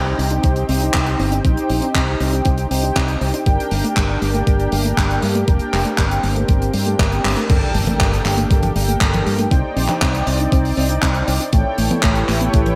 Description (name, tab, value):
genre	italo disco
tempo	119 BPM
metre	4/4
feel	straight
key	G minor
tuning	A4 = 444 Hz
part	lush unison pad	sustained chords	0.1-12.8 s	A3 to D5	-27 LUFS	equal	chorus
part	soft round pluck	arpeggios	0.0-12.7 s	G3 to D4	-28 LUFS	equal	chorus, delay
part	mellow synth brass	stabs	0.0-12.8 s	D4 to G5	-26 LUFS	equal	chorus, delay
part	fingered electric bass	bass	0.0-12.7 s	F1 to G2	-23 LUFS	equal	none
part	tight funk drum kit	drums	0.2-12.8 s	crash cymbal, handclaps, hi-hat, toms	-25 LUFS	equal	gated reverb
part	electronic kick drum	drums	0.4-12.6 s	none	-20 LUFS	equal	none
part	impact	sound effects	7.6-9.5 s	none	-29 LUFS	equal	none
room	light reverb, small room reverb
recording	none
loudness	-18 LUFS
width	mono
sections	0.0-7.5 A section; 7.5-12.8 B section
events	drum fill 7.2; band accent 7.2; impact 7.5-9.5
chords	0.0 Cm; 3.5 Gm; 7.5 Gmadd9; 9.5 Cmadd9; 11.5 A7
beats	0.44 0.94 | 1.45 1.95 2.45 2.96 | 3.46 3.97 4.47 4.97 | 5.48 5.98 6.49 6.99 | 7.50 8.00 8.50 9.01 | 9.51 10.02 10.52 11.03 | 11.53 12.03 12.54